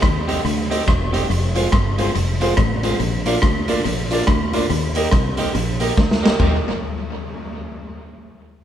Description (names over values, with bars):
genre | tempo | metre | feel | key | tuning
ska | 141 BPM | 4/4 | swing 61% on 8ths | Eb major | A4 = 440 Hz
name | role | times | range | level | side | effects
mellow electric guitar | riff | 0.0-6.1 s | Fb2 to Eb3 | -29 LUFS | left 5 dB | none
fingered electric bass | bass | 0.0-6.6 s | Fb1 to Eb2 | -23 LUFS | equal | none
raw garage drum kit | drums | 0.0-6.5 s | china cymbal, hi-hat, kick drum, rim click, snare drum, toms | -20 LUFS | equal | tape echo
electric guitar at the edge of break-up | accompaniment | 0.3-6.6 s | Ab3 to G4 | -26 LUFS | right 5 dB | none
warm upright piano | stabs | 0.3-6.6 s | F4 to Eb5 | -25 LUFS | left 1 dB | none
room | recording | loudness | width
moderate stone room reverb, RT60 1.1 s | band playing live in one room | -16 LUFS | side -10 dB against mid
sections
0.0-6.4 A section; 6.4-8.1 B section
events
drum fill 6.0-6.4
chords
0.0 Cm; 1.3 Fm; 3.0 Bb; 4.7 Eb